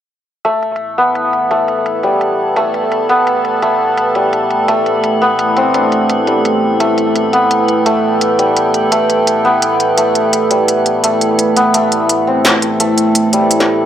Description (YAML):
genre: half-time drum and bass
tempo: 170 BPM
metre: 4/4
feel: swing 53% on 16ths, half-time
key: A minor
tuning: A4 = 440 Hz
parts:
  - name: santur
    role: arpeggios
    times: 0.4-13.9 s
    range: G3 to D4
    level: -13 LUFS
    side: left 1 dB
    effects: low-pass filter, analog delay
  - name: industrial drum kit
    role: drums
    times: 0.4-13.7 s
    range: hi-hat, snare drum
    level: -16 LUFS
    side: equal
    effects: low-pass filter on hats, low-pass filter on snare
  - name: dark analog pad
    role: sustained chords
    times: 1.0-13.9 s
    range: A3 to A5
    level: -17 LUFS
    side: right 1 dB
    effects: chorus
  - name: metallic inharmonic drone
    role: texture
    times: 1.2-13.9 s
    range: A4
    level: -20 LUFS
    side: right 2 dB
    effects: chorus, built-in reverb
room: light reverb, digital ambience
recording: dry, gritty hardware recording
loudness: -11 LUFS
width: side -10 dB against mid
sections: 0.4-13.9 A section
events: filter sweep on drum 0.4-13.9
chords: 0.4 A5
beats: | 0.45 0.80 1.16 1.51 | 1.86 2.21 2.57 2.92 | 3.27 3.62 3.98 4.33 | 4.68 5.04 5.39 5.74 | 6.10 6.45 6.80 7.16 | 7.51 7.86 8.21 8.57 | 8.92 9.27 9.62 9.98 | 10.33 10.68 11.04 11.39 | 11.74 12.10 12.45 12.80 | 13.15 13.51